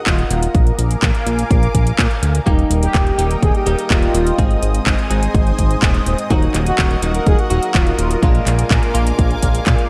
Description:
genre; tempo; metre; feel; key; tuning
italo disco; 125 BPM; 4/4; straight; unclear; A4 = 440 Hz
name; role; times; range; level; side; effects
analog synth brass; melody; 0.0-8.4 s; Eb4 to Bb4; -24 LUFS; equal; chorus, digital delay
lush unison pad; sustained chords; 0.0-9.9 s; Bb4 to Eb6; -27 LUFS; equal; chorus, phaser
fat analog bass; bass; 0.1-9.8 s; Eb1 to Bb2; -20 LUFS; equal; none
electronic kick drum; drums; 0.1-9.8 s; none; -18 LUFS; equal; none
house drum kit; drums; 0.1-9.9 s; handclaps, hi-hat; -25 LUFS; equal; gated reverb
direct-recorded clean electric guitar; stabs; 2.5-9.9 s; Ab2 to Ab4; -26 LUFS; equal; analog chorus
room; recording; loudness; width
light reverb; none; -16 LUFS; mono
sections
0.0-9.9 A section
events
none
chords
0.0 Ebm; 0.5 Bb7; 2.5 Eb; 4.4 Ab; 6.3 Ebm; 8.2 Bb7

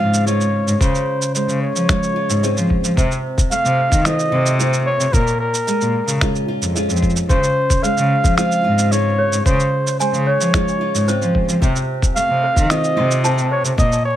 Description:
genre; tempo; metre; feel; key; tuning
folktronica; 111 BPM; 4/4; straight; Db major; A4 = 439 Hz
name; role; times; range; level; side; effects
mellow flugelhorn; melody; 0.0-14.2 s; Bb4 to F5; -20 LUFS; equal; plate reverb, ping-pong delay
nylon-string guitar; arpeggios; 0.0-14.2 s; Bb2 to F4; -23 LUFS; right 1 dB; plate reverb
dark cello; bass; 0.0-13.9 s; F2 to F3; -20 LUFS; equal; none
electronic shaker and finger snaps; drums; 0.1-14.0 s; none; -22 LUFS; right 2 dB; overdrive
electronic kick drum; drums; 0.8-13.9 s; none; -18 LUFS; equal; overdrive
toy piano; second line; 7.8-13.8 s; C5 to A5; -26 LUFS; right 1 dB; plate reverb, ping-pong delay
room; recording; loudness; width
light reverb; none; -15 LUFS; side -12 dB against mid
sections
0.0-14.2 A section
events
none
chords
0.0 Dbmaj7; 3.0 F7/C; 5.1 Bbm7; 7.3 Dbmaj7; 11.6 F7/C

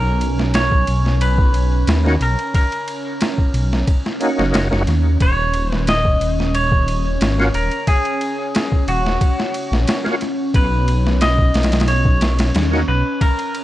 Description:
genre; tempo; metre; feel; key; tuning
trip hop; 90 BPM; 4/4; straight; unclear; A4 = 440 Hz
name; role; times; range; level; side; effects
clean electric guitar; melody; 0.0-13.6 s; Gb4 to Eb5; -22 LUFS; equal; spring reverb, tape echo
deep dark ambient pad; sustained chords; 0.0-13.6 s; Db4; -26 LUFS; equal; chorus, built-in reverb
dark detuned saw bass; bass; 0.0-13.0 s; Eb1 to D#2; -17 LUFS; equal; none
boom bap sampler-style drum kit; drums; 0.2-13.6 s; kick drum, ride cymbal, snare drum; -20 LUFS; equal; overdrive, studio reverb
overdriven tonewheel organ; accompaniment; 2.0-12.8 s; A#3 to F#4; -22 LUFS; equal; chorus vibrato, slow rotary speaker, tremolo, tape echo
room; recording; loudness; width
digital ambience; worn, warbling old tape, cassette tape, warbly pitch drift; -15 LUFS; side -15 dB against mid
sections
0.0-13.6 A section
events
none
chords
0.0 Bmaj7; 5.2 Ebm7; 10.5 B

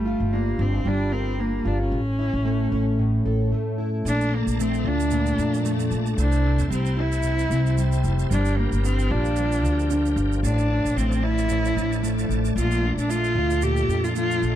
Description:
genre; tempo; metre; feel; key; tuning
acoustic pop; 113 BPM; 4/4; swing 55% on 16ths; unclear; A4 = 439 Hz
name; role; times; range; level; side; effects
warm cello; melody; 0.0-14.5 s; A3 to G4; -26 LUFS; equal; none
fingerpicked plugged-in steel-string acoustic guitar; accompaniment; 0.0-14.6 s; A2 to Bb4; -26 LUFS; equal; double-tracked left and right
upright bass; bass; 0.0-14.6 s; F1 to F2; -24 LUFS; equal; none
bright tonewheel organ; sustained chords; 4.1-14.6 s; F3 to Bb5; -36 LUFS; equal; overdrive, chorus vibrato, fast rotary speaker
tube shaker; percussion; 4.1-14.6 s; none; -39 LUFS; right 20 dB; none
room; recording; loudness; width
little or no reverb; dry, close 1970s-style studio recording; -20 LUFS; side -11 dB against mid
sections
0.0-4.1 A section; 4.1-14.6 B section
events
break 3.5-4.1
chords
0.0 Gm7; 1.9 A; 4.1 Bbmaj7; 6.2 C6; 8.3 Gm7; 10.4 Dm/A; 12.6 Bbmaj7

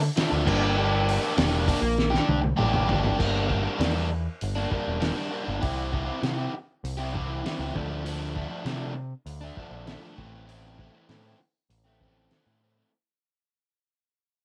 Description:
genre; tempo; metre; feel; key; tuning
indie rock; 99 BPM; 4/4; straight; G dorian; A4 = 440 Hz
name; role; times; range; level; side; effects
overdriven semi-hollow guitar; riff; 0.0-12.9 s; E3 to A4; -31 LUFS; equal; cassette tape
growling picked electric bass; bass; 0.0-12.8 s; E1 to C3; -31 LUFS; equal; overdrive
cloth-damped thuddy drum kit; drums; 0.2-12.5 s; crash cymbal, hi-hat, kick drum, snare drum, toms; -31 LUFS; equal; cassette tape
room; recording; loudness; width
light reverb; home recording on cassette; -27 LUFS; mono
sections
0.0-3.2 A section; 3.2-12.9 B section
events
drum fill 2.0-3.2; fade-out 3.2-12.9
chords
0.5 Gm; 5.6 C; 7.7 Dm; 10.2 Am

